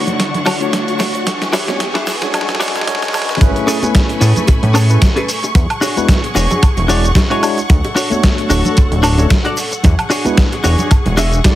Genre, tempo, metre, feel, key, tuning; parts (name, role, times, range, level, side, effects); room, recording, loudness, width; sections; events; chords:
nu-disco, nu disco; 112 BPM; 4/4; swing 56% on 16ths; E mixolydian; A4 = 440 Hz
tine electric piano; accompaniment; 0.0-11.6 s; G#3 to G#5; -20 LUFS; equal; medium stereo tremolo, sidechain pumping, dub echo
clear symphonic string section; sustained chords; 0.0-11.6 s; D3 to C#6; -23 LUFS; equal; sidechain pumping, low-pass filter
riser; sound effects; 0.0-3.4 s; -26 LUFS; equal
dusty soul sampler-style drum kit; drums; 0.1-11.6 s; hi-hat, shaker, snare drum, woodblock; -19 LUFS; right 1 dB; overdrive
egg shaker, congas and bongos; percussion; 0.1-11.6 s; -24 LUFS; right 1 dB
direct-recorded clean electric guitar; riff; 0.2-11.4 s; C#4 to E5; -19 LUFS; left 2 dB; lush chorus, dub echo
chorused synth bass; bass; 3.4-11.4 s; D1 to A2; -13 LUFS; equal; tube saturation, sidechain pumping
kick drum; drums; 3.4-11.6 s; -12 LUFS; equal
light reverb, studio reverb; heavily compressed radio sound, multiband compression, high-pass filter; -11 LUFS; side -14 dB against mid
0.0-3.4 A section; 3.4-11.6 B section
build-up 0.0-3.4; drum fill 0.0-3.4; riser 0.0-3.4; filter sweep on clean electric guitar 0.0-3.4; drop 3.4-11.6
0.0 Dmaj7; 1.3 E13; 3.4 Amaj9; 5.6 E13; 7.7 Dmaj7; 9.8 E13